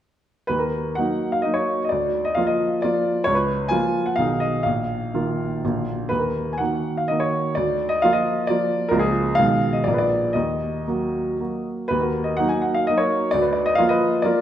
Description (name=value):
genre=classical, romantic triple-time dance for piano with dotted rhythms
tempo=109-144 BPM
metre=3/4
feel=rubato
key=Eb minor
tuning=A4 = 441 Hz
part: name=clear baby grand piano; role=solo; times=0.5-14.4 s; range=Bb1 to Ab5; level=-19 LUFS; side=equal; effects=none
room=wet recital hall reverb, RT60 1.5 s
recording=none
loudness=-19 LUFS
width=side -11 dB against mid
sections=0.5-11.9 A section; 11.9-14.4 A section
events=none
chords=0.5 Ebm; 1.9 Bb/D; 3.3 Bbm/Db; 4.2 Abm/Cb; 4.7 Bbsus4; 5.6 Bb; 6.1 Ebm; 7.6 Bb/D; 8.9 Bbm/Db; 9.4 Abm/Cb; 9.9 Bb7; 10.3 Ebm; 13.3 Bb/D